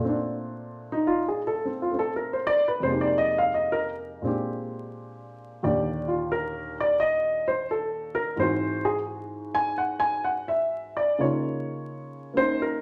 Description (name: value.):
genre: solo jazz.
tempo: 86 BPM.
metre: 4/4.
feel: swing 69% on 8ths, rubato.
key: unclear.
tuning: A4 = 440 Hz.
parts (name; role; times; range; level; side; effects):
dark upright piano; solo; 0.0-12.8 s; Eb2 to Ab5; -27 LUFS; equal; none.
room: wet large studio reverb, RT60 0.9 s.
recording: vinyl crackle.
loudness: -26 LUFS.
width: mono.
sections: 0.0-12.8 A section.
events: upright piano solo 0.0-12.8.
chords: 0.0 Bbmaj9; 2.8 Fm11; 4.2 Bb13; 5.6 Ebmaj7; 8.4 Abaug7; 11.2 Db69.